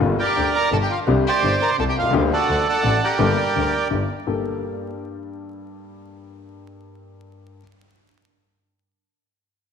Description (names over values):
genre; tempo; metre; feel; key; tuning
tango; 169 BPM; 3/4; rubato; G minor; A4 = 441 Hz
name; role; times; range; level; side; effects
dark grand piano; accompaniment; 0.0-7.6 s; G1 to A4; -24 LUFS; left 4 dB; none
bright double bass; bass; 0.0-4.4 s; G1 to D2; -26 LUFS; right 2 dB; none
bandoneon; melody; 0.2-3.9 s; A4 to Bb5; -21 LUFS; right 5 dB; slapback echo
rich violin; second line; 0.2-3.9 s; F4 to Bb4; -27 LUFS; left 5 dB; none
room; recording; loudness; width
wet echo chamber reverb, RT60 2.3 s; 1960s-style stereo, vinyl crackle; -18 LUFS; side -7 dB against mid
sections
0.0-4.3 A section; 4.3-6.4 B section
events
none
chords
0.0 Gm7; 1.1 Csus2; 2.1 Gm/D; 2.5 D; 3.2 Gmadd9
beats
| 0.01 0.37 0.73 | 1.08 1.44 1.79 | 2.14 2.49 2.84 | 3.20 3.55 3.91 | 4.27 4.63 4.98 | 5.33 5.68 6.04